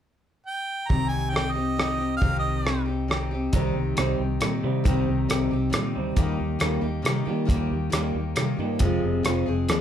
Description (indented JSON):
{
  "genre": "folk rock and heartland rock",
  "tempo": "137 BPM",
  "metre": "3/4",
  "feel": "straight",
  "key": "C minor",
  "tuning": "A4 = 440 Hz",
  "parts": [
    { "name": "clear harmonica", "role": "melody", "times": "0.5-2.8 s", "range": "Eb5 to Bb5", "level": "-28 LUFS", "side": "right 2 dB", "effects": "none" },
    { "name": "picked steel-string acoustic guitar", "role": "accompaniment", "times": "0.9-9.8 s", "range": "F2 to Ab4", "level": "-28 LUFS", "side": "left 3 dB", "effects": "none" },
    { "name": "fingered electric bass", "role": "bass", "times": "0.9-9.8 s", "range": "F1 to Eb3", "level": "-28 LUFS", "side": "equal", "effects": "none" },
    { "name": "cloth-damped thuddy drum kit", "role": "drums", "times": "0.9-9.8 s", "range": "hi-hat, kick drum, rim click", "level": "-25 LUFS", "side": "equal", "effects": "none" },
    { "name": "electric guitar through a small old amp", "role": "riff", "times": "3.5-9.8 s", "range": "C3 to F4", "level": "-29 LUFS", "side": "right 3 dB", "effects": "none" }
  ],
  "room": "light reverb",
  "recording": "band playing live in one room",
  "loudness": "-22 LUFS",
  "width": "side -9 dB against mid",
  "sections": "0.9-3.5 A section; 3.5-9.8 B section",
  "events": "none",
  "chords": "0.0 N.C.; 0.9 Cm; 6.2 Eb; 8.8 Fm"
}